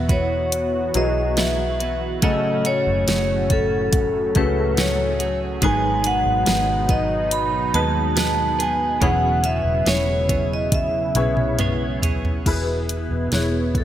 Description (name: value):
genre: pop ballad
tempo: 70 BPM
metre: 4/4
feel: straight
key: E major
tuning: A4 = 438 Hz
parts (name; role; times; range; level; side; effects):
- vibraphone with medium hard mallets; melody; 0.0-13.8 s; G#4 to B5; -22 LUFS; equal; none
- clear concert grand piano; accompaniment; 0.0-13.8 s; G#2 to C#5; -26 LUFS; left 3 dB; ensemble chorus
- sweeping resonant pad; sustained chords; 0.0-13.8 s; A2 to F#4; -28 LUFS; right 1 dB; chorus
- direct-recorded clean electric guitar; arpeggios; 0.0-12.5 s; G#2 to C#5; -30 LUFS; right 6 dB; wide subtle chorus
- vintage muted fingered electric bass; bass; 0.0-13.8 s; E1 to D#2; -25 LUFS; equal; none
- smooth R&B drum kit; drums; 0.1-13.8 s; crash cymbal, hi-hat, kick drum, snare drum, toms; -22 LUFS; equal; gated reverb
room: moderate lush hall reverb, RT60 2.8 s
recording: bright 1980s-style digital production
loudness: -18 LUFS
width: side -11 dB against mid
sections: 0.0-12.5 A section; 12.5-13.8 B section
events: drum fill 10.7-12.5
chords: 0.0 Esus2; 2.2 F#madd9; 5.6 G#m; 9.0 E6; 12.5 E